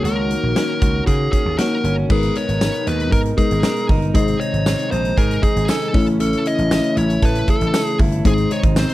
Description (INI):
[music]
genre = 1980s-style pop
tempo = 117 BPM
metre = 4/4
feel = straight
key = unclear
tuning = A4 = 442 Hz
[part]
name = smooth overdriven lead guitar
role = melody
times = 0.0-8.9 s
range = Ab4 to Eb5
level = -23 LUFS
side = equal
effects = slapback echo
[part]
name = mellow FM electric piano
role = accompaniment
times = 0.0-8.9 s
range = C3 to Eb5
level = -23 LUFS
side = left 4 dB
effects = chorus
[part]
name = direct-recorded clean electric guitar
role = riff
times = 0.0-8.9 s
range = Eb3 to Bb4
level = -27 LUFS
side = right 4 dB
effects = lush chorus, slapback echo
[part]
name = vintage slap bass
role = bass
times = 0.0-8.8 s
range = G1 to Db3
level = -21 LUFS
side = equal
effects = none
[part]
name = huge arena drum kit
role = drums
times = 0.0-8.9 s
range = crash cymbal, hi-hat, kick drum, snare drum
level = -20 LUFS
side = equal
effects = none
[part]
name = pipe organ, principal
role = sustained chords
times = 2.1-8.9 s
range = Cb3 to Bb4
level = -27 LUFS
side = right 1 dB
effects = none
[part]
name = tambourine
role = percussion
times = 2.6-8.9 s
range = none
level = -34 LUFS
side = right 8 dB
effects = none
[sound]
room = little or no reverb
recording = dry, close 1970s-style studio recording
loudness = -15 LUFS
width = side -16 dB against mid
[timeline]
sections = 0.0-2.1 A section; 2.1-8.9 B section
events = none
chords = 0.0 Gb6; 2.1 Abmadd9; 4.2 Ab; 5.9 A; 8.3 Ab